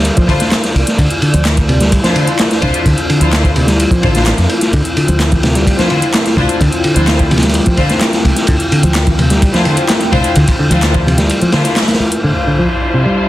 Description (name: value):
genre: breakbeat, breaks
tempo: 128 BPM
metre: 4/4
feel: straight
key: D minor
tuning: A4 = 441 Hz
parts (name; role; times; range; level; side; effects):
- dark analog pad; sustained chords; 0.2-13.3 s; F3 to G5; -20 LUFS; left 1 dB; chorus, sidechain pumping
- picked electric bass; riff; 0.0-13.3 s; C3 to G3; -16 LUFS; equal; tube saturation, low-pass filter
- deep dub fingered electric bass; bass; 0.0-11.3 s; A1 to F2; -14 LUFS; equal; none
- crunchy breakbeat drum kit; drums; 0.0-12.0 s; kick drum, ride cymbal, snare drum; -14 LUFS; equal; none
- garage drum kit; drums; 0.0-12.2 s; handclaps, hi-hat; -21 LUFS; equal; low-pass filter on hats, low-pass filter on snare
- clear symphonic string section; stabs; 0.3-13.3 s; D4 to C5; -19 LUFS; left 2 dB; low-pass filter, dub echo
- congas; percussion; 5.1-12.1 s; none; -22 LUFS; equal; none
- impact; sound effects; 12.3-13.3 s; none; -21 LUFS; equal; none
room: moderate studio reverb, RT60 0.6 s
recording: dense, heavily limited modern master, vinyl crackle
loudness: -10 LUFS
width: side -15 dB against mid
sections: 0.0-12.2 A section; 12.2-13.3 B section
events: band accent 11.8; impact 12.2-13.3; filter sweep on picked electric bass 12.2-13.3; filter sweep on string section 12.2-13.3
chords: 0.0 Dm9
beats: 0.05 0.52 | 0.98 1.45 1.92 2.39 | 2.86 3.33 3.80 4.27 | 4.74 5.20 5.67 6.14 | 6.61 7.08 7.55 8.02 | 8.48 8.95 9.42 9.89 | 10.36 10.83 11.30 11.77 | 12.23 12.70 13.17